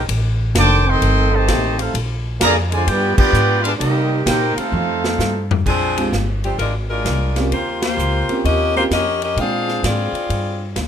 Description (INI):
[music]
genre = jazz, big band swing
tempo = 129 BPM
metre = 4/4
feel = swing 66% on 8ths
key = Bb mixolydian from 5.7 s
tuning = A4 = 441 Hz
[part]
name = clear trumpet section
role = melody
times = 0.0-5.5 s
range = C4 to D6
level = -19 LUFS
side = right 1 dB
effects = none
[part]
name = upright bass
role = bass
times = 0.0-10.9 s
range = F1 to C3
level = -20 LUFS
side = equal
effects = none
[part]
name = swinging big-band drum kit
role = drums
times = 0.1-10.9 s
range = crash cymbal, hi-hat, kick drum, ride cymbal, snare drum, toms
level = -23 LUFS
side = left 1 dB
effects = none
[part]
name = clear trombone section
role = second line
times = 0.6-5.5 s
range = C3 to G4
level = -22 LUFS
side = right 2 dB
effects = none
[part]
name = bright saxophone section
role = melody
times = 5.7-10.7 s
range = F3 to F5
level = -20 LUFS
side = left 2 dB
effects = none
[part]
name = warm upright piano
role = accompaniment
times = 6.0-10.1 s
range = Ab3 to G5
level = -24 LUFS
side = right 4 dB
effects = none
[sound]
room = light reverb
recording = minimal, uncompressed stereo recording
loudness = -15 LUFS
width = side -8 dB against mid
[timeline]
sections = 0.0-5.7 A section; 5.7-10.9 B section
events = band accent 3.1, 7.7; drum fill 4.7-5.7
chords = 0.1 F13; 1.9 Bb7; 2.9 G7b9; 3.8 Cm7; 4.7 F9; 5.7 Bb13; 7.5 Eb13; 9.4 Bb13